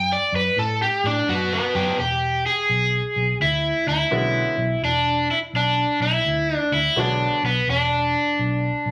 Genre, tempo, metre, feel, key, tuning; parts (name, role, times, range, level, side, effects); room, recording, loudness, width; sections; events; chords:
blues; 84 BPM; 4/4; swing 65% on 8ths; E mixolydian; A4 = 440 Hz
overdriven semi-hollow guitar; melody; 0.0-8.9 s; B3 to G5; -22 LUFS; equal
vintage muted fingered electric bass; bass; 0.0-8.9 s; E1 to A2; -28 LUFS; equal
bright upright piano; accompaniment; 4.1-7.4 s; D3 to C#5; -30 LUFS; equal
moderate large studio reverb, RT60 0.9 s; vinyl crackle; -21 LUFS; mono
0.0-2.0 A section; 2.0-8.9 B section
overdriven electric guitar solo 0.0-2.0
0.0 B7(no3); 2.0 E13